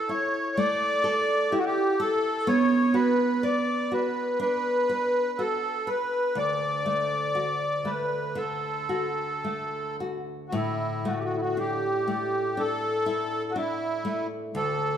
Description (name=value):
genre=celtic folk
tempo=53-64 BPM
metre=4/4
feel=rubato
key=unclear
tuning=A4 = 438 Hz
part: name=accordion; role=melody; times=0.0-15.0 s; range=E4 to D5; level=-26 LUFS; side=equal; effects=light tremolo tuning
part: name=nylon-string guitar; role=accompaniment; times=0.0-15.0 s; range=D2 to B4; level=-29 LUFS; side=right 1 dB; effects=none
room=wet large studio reverb, RT60 1.5 s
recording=band playing live in one room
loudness=-24 LUFS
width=side -9 dB against mid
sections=0.0-10.5 A section; 10.5-15.0 B section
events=none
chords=0.0 Dsus2; 2.5 Bm; 6.4 D; 10.5 Asus4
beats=0.57 1.52 | 2.46 3.42 4.40 5.38 | 6.37 7.35 8.37 9.45 | 10.54 11.57 12.58 13.56 | 14.55